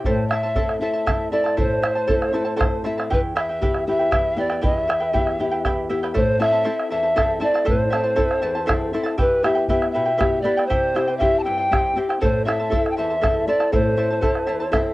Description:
andean folk, Andean ensemble; 79 BPM (dotted quarters); 6/8; straight; A4 = 439 Hz
charango; accompaniment; 0.0-14.9 s; E4 to A5; -26 LUFS; right 2 dB; cassette tape
nylon-string guitar; accompaniment; 0.0-14.9 s; E2 to E5; -25 LUFS; left 3 dB; cassette tape
bombo; percussion; 0.0-14.8 s; -24 LUFS; right 1 dB
mellow polished pan flute; melody; 0.1-14.9 s; B4 to A5; -21 LUFS; equal; cassette tape
moderate booth ambience, RT60 0.2 s; home recording on cassette; -18 LUFS; side -18 dB against mid
0.0-6.2 A section; 6.2-14.9 A section
nylon-string guitar fill 2.3-3.1, 14.5-14.9
0.1 Am; 3.1 Em; 6.2 Am; 9.2 Em; 10.7 C; 12.2 Am

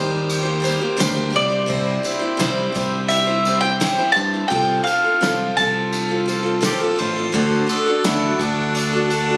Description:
folk rock and heartland rock; 85 BPM; 4/4; straight; C major; A4 = 441 Hz
picked steel-string acoustic guitar; accompaniment; 0.0-9.4 s; C3 to C5; -25 LUFS; equal
mellow accordion; sustained chords; 0.0-9.4 s; C4 to D5; -33 LUFS; equal
picked electric bass; bass; 0.0-9.4 s; A1 to G2; -26 LUFS; equal
soft brush drum kit; drums; 0.3-9.3 s; crash cymbal, kick drum, ride cymbal, snare drum; -28 LUFS; equal
tambourine; percussion; 0.3-9.3 s; -35 LUFS; equal
mandolin; melody; 1.4-6.9 s; D5 to A5; -22 LUFS; equal
mellow harmonica; second line; 6.7-9.4 s; D4 to C5; -26 LUFS; equal; digital delay
light reverb, small room ambience; recorded on a phone in the room, studio reverb, compression; -19 LUFS; mono
0.0-9.4 A section
0.0 Eb6; 1.7 C; 4.5 F/C; 7.3 D

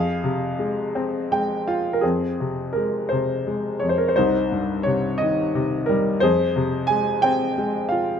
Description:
classical, lyrical solo piano; 56-59 BPM (dotted quarters); 6/8; rubato; F minor; A4 = 440 Hz
bright baby grand piano; solo; 0.0-8.2 s; C2 to Ab5; -20 LUFS; equal
moderate recital hall reverb, RT60 1.8 s; close, detailed microphones; -20 LUFS; side -7 dB against mid
0.0-2.0 A section; 2.0-8.2 A section
grand piano fill 0.9-2.0
0.0 Fm; 4.2 Cm; 6.2 Fm

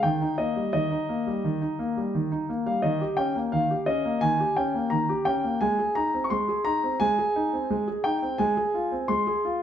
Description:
classical-period piano sonatina; 86 BPM; 4/4; straight; Ab major; A4 = 440 Hz
warm grand piano; solo; 0.0-9.6 s; Eb3 to Db6; -23 LUFS; equal
moderate recital hall reverb, RT60 1.5 s; dark, warm production; -23 LUFS; side -9 dB against mid
0.0-9.6 A section
0.0 Eb; 2.8 Eb7; 5.6 Ab; 8.4 Fm/Ab

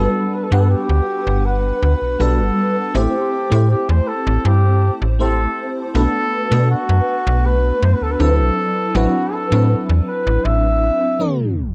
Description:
vaporwave; 80 BPM; 4/4; straight; A dorian; A4 = 440 Hz
mellow flugelhorn; melody; 0.0-11.6 s; F#4 to E5; -23 LUFS; equal; tape echo
FM electric piano with soft pad layer; accompaniment; 0.0-11.7 s; F#3 to F#5; -23 LUFS; equal; phaser, ensemble chorus, tape echo
slap-like FM bass; bass; 0.0-11.7 s; G1 to B2; -18 LUFS; equal
light reverb, studio reverb; tape stop; -17 LUFS; mono
0.0-11.7 A section
tape stop 11.2-11.7
0.0 Gmaj7; 3.0 Am7; 6.0 Bm7; 8.6 D13/A

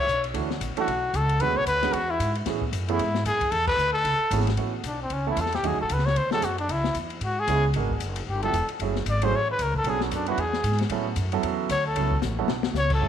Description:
jazz, small-group swing and bop; 227 BPM; 4/4; swing 59% on 8ths; A major; A4 = 441 Hz
breathy trumpet; melody; 0.0-13.1 s; B3 to D5; -26 LUFS; left 1 dB
upright bass; bass; 0.1-13.1 s; E1 to A2; -28 LUFS; equal
open jazz drum kit; drums; 0.1-13.1 s; crash cymbal, hi-hat, kick drum, ride cymbal, snare drum; -33 LUFS; left 6 dB
warm concert grand piano; accompaniment; 0.3-13.1 s; D3 to B4; -30 LUFS; right 10 dB
moderate echo chamber reverb, RT60 1.7 s, small room ambience; 1960s-style stereo with parts hard left and right; -23 LUFS; side -9 dB against mid
0.0-4.6 A section; 4.6-13.0 B section
band accent 3.7; trumpet solo 4.6-13.1; drum fill 12.2-12.8
0.3 Dmaj9; 1.4 E13; 2.5 Amaj7; 4.6 A69; 5.6 D#m7b5; 6.2 D7#11; 6.7 C#m7; 7.7 G#m7b5; 8.3 G13; 8.8 F#m9; 9.9 Bm7; 10.4 E; 10.9 A69

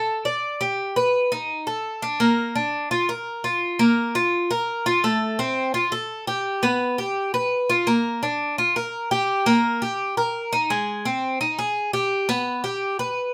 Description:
latin; 169 BPM; 4/4; straight; A4 = 441 Hz
Cuban tres; solo; 0.0-13.3 s; Ab3 to D5; -23 LUFS; equal
moderate studio reverb, RT60 0.6 s; -23 LUFS; mono
0.0-2.2 A section; 2.2-13.3 B section

